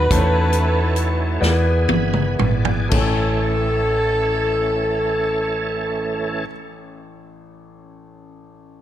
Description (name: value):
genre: slow gospel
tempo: 36-49 BPM (dotted quarters)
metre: 6/8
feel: straight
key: A major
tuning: A4 = 440 Hz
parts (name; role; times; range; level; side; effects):
- warm saxophone section; melody; 0.0-6.5 s; D#4 to B4; -22 LUFS; equal; none
- clear concert grand piano; accompaniment; 0.0-8.8 s; A1 to G#5; -27 LUFS; left 3 dB; none
- bright tonewheel organ; sustained chords; 0.0-6.5 s; E3 to B5; -26 LUFS; right 3 dB; fast rotary speaker, overdrive, chorus vibrato
- hollow-body short-scale fingered electric bass; bass; 0.0-6.5 s; G1 to E2; -22 LUFS; equal; none
- swinging big-band drum kit; drums; 0.1-3.2 s; crash cymbal, hi-hat, kick drum, snare drum, toms; -21 LUFS; right 1 dB; none
room: studio ambience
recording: none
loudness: -17 LUFS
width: side -11 dB against mid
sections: 0.0-2.9 A section; 2.9-8.8 B section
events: slowing down 0.0-2.9; drum fill 1.4-2.9; tonewheel organ fill 1.4-2.9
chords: 0.1 A/E; 1.4 E7; 2.9 Amaj7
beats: | 0.11 1.41 | 2.92 4.57 | 6.21 7.86